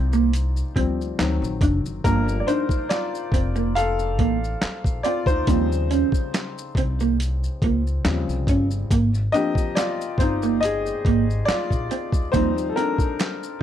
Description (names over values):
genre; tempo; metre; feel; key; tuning
R&B, neo-soul; 70 BPM; 4/4; swing 53% on 16ths; unclear; A4 = 439 Hz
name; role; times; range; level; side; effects
electric guitar through a small old amp; second line; 0.0-13.2 s; Bb3 to D4; -24 LUFS; right 5 dB; phaser
warm grand piano; accompaniment; 0.0-13.6 s; Db3 to F5; -25 LUFS; left 3 dB; plate reverb
upright bass; bass; 0.0-12.7 s; F1 to Eb2; -24 LUFS; equal; none
maracas and finger snaps; percussion; 0.1-13.6 s; none; -39 LUFS; equal; none
boom bap sampler-style drum kit; drums; 0.3-13.4 s; handclaps, hi-hat, kick drum, snare drum; -23 LUFS; equal; none
room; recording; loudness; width
light reverb; none; -20 LUFS; side -10 dB against mid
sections
0.0-13.6 A section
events
grand piano solo 0.0-13.6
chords
0.0 Eb69; 1.2 D7b9; 2.0 Gm9; 5.5 Eb13; 8.9 Ab69; 12.3 Eb69